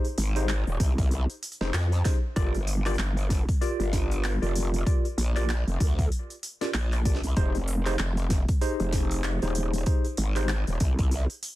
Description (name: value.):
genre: glitch hop.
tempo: 96 BPM.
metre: 4/4.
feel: swing 59% on 16ths.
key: F dorian.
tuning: A4 = 441 Hz.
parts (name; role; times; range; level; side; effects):
tine electric piano; stabs; 0.0-10.5 s; Eb4 to D5; -33 LUFS; equal; medium stereo tremolo, sidechain pumping, tape echo.
glitchy drum kit; drums; 0.0-11.6 s; handclaps, hi-hat, snare drum; -35 LUFS; equal; none.
growl bass; bass; 0.2-11.3 s; Eb1 to F2; -26 LUFS; equal; chorus.
electronic kick drum; drums; 0.8-11.1 s; none; -25 LUFS; equal; none.
room: little or no reverb.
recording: dense, heavily limited modern master, vinyl crackle.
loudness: -24 LUFS.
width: side -16 dB against mid.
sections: 0.0-11.6 A section.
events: none.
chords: 0.0 Fm7; 2.4 Gm7; 7.4 Fm7.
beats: 0.49 1.11 1.74 | 2.36 2.99 3.61 4.24 | 4.86 5.49 6.11 6.74 | 7.36 7.99 8.61 9.24 | 9.86 10.49 11.11.